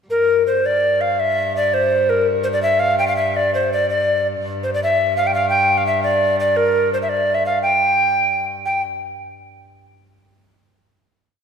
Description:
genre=medieval dance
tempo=112 BPM (dotted quarters)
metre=6/8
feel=straight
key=G dorian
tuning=A4 = 440 Hz
part: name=mellow hollow tenor recorder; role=melody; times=0.1-8.8 s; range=Bb4 to G5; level=-16 LUFS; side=equal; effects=none
part: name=clear viola da gamba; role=drone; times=0.1-8.7 s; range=G2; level=-27 LUFS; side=left 1 dB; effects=none
room=wet scoring stage reverb, RT60 2.0 s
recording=recorded in a church or concert hall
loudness=-15 LUFS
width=side -6 dB against mid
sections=0.1-8.7 A section; 8.7-9.7 final note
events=none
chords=none

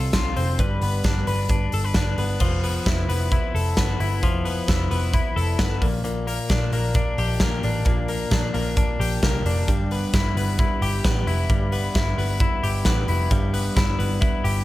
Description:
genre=jangly indie pop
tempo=132 BPM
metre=4/4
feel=straight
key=unclear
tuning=A4 = 440 Hz
part: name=twelve-string electric guitar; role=arpeggios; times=0.0-14.6 s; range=G2 to B4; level=-25 LUFS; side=left 2 dB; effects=none
part: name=vintage muted picked electric bass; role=bass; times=0.0-14.6 s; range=F1 to C2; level=-25 LUFS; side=equal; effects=none
part: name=big rock drum kit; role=drums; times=0.1-14.6 s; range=crash cymbal, hi-hat, kick drum, snare drum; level=-23 LUFS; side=equal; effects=none
room=light reverb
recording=none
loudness=-20 LUFS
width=side -16 dB against mid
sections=0.0-2.4 A section; 2.4-14.6 B section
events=none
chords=0.0 F/C; 0.6 G; 2.4 Fmaj9#11; 5.8 Bb6; 9.7 G6

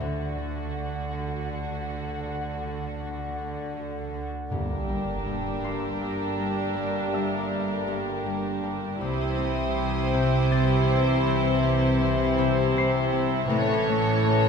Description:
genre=cinematic, suspense film score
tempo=80 BPM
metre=3/4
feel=straight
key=G dorian from 4.5 s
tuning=A4 = 439 Hz
part: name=warm studio violin section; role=melody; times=0.0-14.5 s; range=F#4 to C#5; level=-33 LUFS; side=left 1 dB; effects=none
part: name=glass harmonica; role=sustained chords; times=0.0-14.5 s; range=A4 to A5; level=-34 LUFS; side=left 2 dB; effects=none
part: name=Celtic harp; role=riff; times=0.0-14.5 s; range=G2 to D4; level=-30 LUFS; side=left 2 dB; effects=none
part: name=dark studio double bass section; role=bass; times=0.0-14.5 s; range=G1 to D2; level=-33 LUFS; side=right 2 dB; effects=none
part: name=warm studio cello section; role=bass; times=0.0-14.5 s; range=G2 to D3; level=-32 LUFS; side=right 2 dB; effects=none
part: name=concert harp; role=texture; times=0.0-14.5 s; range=E5 to C7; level=-38 LUFS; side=left 5 dB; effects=none
part: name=warm studio violin section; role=second line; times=4.5-14.5 s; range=G4 to A4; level=-32 LUFS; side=equal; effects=none
part: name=warm studio viola section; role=accompaniment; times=4.5-14.5 s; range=E3 to E4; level=-31 LUFS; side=right 2 dB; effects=none
part: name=mellow French horn section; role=sustained chords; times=4.5-14.5 s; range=D3 to C#4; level=-33 LUFS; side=left 3 dB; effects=none
part: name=timpani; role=percussion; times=4.5-5.6 s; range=G2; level=-37 LUFS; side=left 1 dB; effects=none
part: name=sub drop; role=sound effects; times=4.5-6.8 s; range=none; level=-36 LUFS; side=right 1 dB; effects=none
part: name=rich studio violin section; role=texture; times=4.5-13.1 s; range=Bb5 to E6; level=-41 LUFS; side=equal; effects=none
room=wet scoring stage reverb, RT60 1.9 s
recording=minimal, uncompressed stereo recording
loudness=-24 LUFS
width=side -6 dB against mid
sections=0.0-4.5 A section; 4.5-14.5 B section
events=impact 4.5-6.8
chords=0.0 D; 4.5 Gm; 9.0 C; 13.5 A

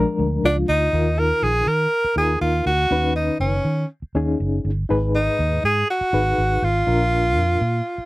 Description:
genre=uptempo 1960s-style soul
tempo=121 BPM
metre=4/4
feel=straight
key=Eb minor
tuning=A4 = 440 Hz
part: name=bright reed electric piano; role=accompaniment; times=0.0-7.6 s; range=Ab2 to B4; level=-24 LUFS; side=left 2 dB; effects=overdrive, tremolo
part: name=vintage muted fingered electric bass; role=bass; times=0.0-8.0 s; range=F#1 to Eb3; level=-22 LUFS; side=right 1 dB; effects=none
part: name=breathy tenor saxophone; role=melody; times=0.5-8.1 s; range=C#4 to Bb4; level=-20 LUFS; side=equal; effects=none
room=little or no reverb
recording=none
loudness=-18 LUFS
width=side -19 dB against mid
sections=0.9-8.1 A section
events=none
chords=0.0 A#7; 0.9 Ebsus2; 2.9 Badd9; 4.9 Abm; 6.9 Bb

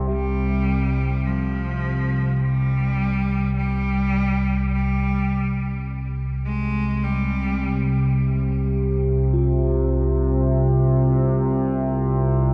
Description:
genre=dark ambient drone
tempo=52 BPM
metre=4/4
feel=straight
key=unclear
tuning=A4 = 443 Hz
part: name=analog drone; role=drone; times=0.0-12.5 s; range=C2 to C3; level=-22 LUFS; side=equal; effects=chorus
part: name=bronze singing bowl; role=texture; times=0.0-0.1, 9.3-12.5 s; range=F4 to G4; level=-36 LUFS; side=equal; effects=shimmer reverb
part: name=bright cello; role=melody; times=0.1-8.2 s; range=F3 to Ab3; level=-28 LUFS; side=equal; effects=diffuse ambient delay
room=wet cathedral reverb, RT60 6.2 s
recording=in a vast, echoing space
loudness=-22 LUFS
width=mono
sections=0.1-12.5 A section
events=filter sweep on synth drone 0.1-12.5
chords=0.1 C5

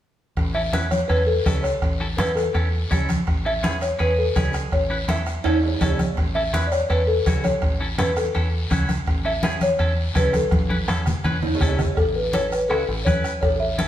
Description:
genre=latin, cumbia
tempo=166 BPM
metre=4/4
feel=straight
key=A major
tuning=A4 = 440 Hz
part: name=fingered electric bass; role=bass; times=0.4-13.9 s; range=A1 to E2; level=-25 LUFS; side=equal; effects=none
part: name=bombo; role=percussion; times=0.4-13.9 s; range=none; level=-26 LUFS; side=equal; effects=none
part: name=guiro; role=percussion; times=0.4-13.9 s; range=none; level=-37 LUFS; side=left 3 dB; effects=none
part: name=timbales and cowbell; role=percussion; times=0.4-13.6 s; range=none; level=-30 LUFS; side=right 4 dB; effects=none
part: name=folk marimba with soft mallets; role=melody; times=0.5-13.9 s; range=A4 to E5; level=-23 LUFS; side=left 1 dB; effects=none
part: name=clean electric guitar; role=accompaniment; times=0.5-13.9 s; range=C#4 to B4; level=-30 LUFS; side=equal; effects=none
part: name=congas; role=percussion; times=0.6-13.9 s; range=none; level=-26 LUFS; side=equal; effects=none
room=wet stone room reverb, RT60 1.3 s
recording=band playing live in one room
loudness=-19 LUFS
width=side -11 dB against mid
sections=0.4-12.0 A section; 12.0-13.9 B section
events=drum fill 5.5-6.2, 10.5-12.0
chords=0.4 A

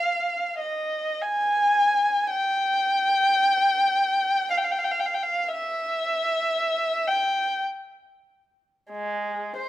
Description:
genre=classical, free, expressive piece for unaccompanied violin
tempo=40-59 BPM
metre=3/4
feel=rubato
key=unclear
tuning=A4 = 438 Hz
part: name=dark violin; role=solo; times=0.0-9.7 s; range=Ab3 to Ab5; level=-22 LUFS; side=equal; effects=none
room=light reverb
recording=close, detailed microphones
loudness=-21 LUFS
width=side -14 dB against mid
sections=0.0-9.7 A section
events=none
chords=none

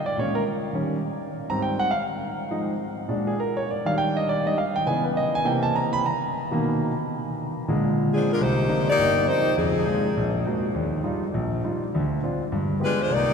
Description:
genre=jazz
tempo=204 BPM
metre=4/4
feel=swing 62% on 8ths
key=C minor from 8.4 s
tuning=A4 = 439 Hz
part: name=warm concert grand piano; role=accompaniment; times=0.0-13.3 s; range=G1 to Cb6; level=-23 LUFS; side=equal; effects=none
part: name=warm saxophone section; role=melody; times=8.1-10.6, 12.8-13.3 s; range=F3 to D5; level=-24 LUFS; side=left 2 dB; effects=none
room=wet cathedral reverb, RT60 7.3 s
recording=recorded in a church or concert hall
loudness=-22 LUFS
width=side -6 dB against mid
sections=0.0-8.4 A section; 8.4-13.3 B section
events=grand piano solo 0.0-8.4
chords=0.2 Bbm7; 0.7 Eb7; 1.3 Abmaj7; 2.5 Fm7; 3.1 Bb7; 3.7 Ebmaj7; 4.9 Dbm7; 5.4 C7; 6.0 Bmaj7; 7.2 Bb7; 8.4 Cm11; 9.6 Fm7; 10.2 Bbaug7; 10.7 Ebmaj9; 11.9 Dm7; 12.5 G7b9

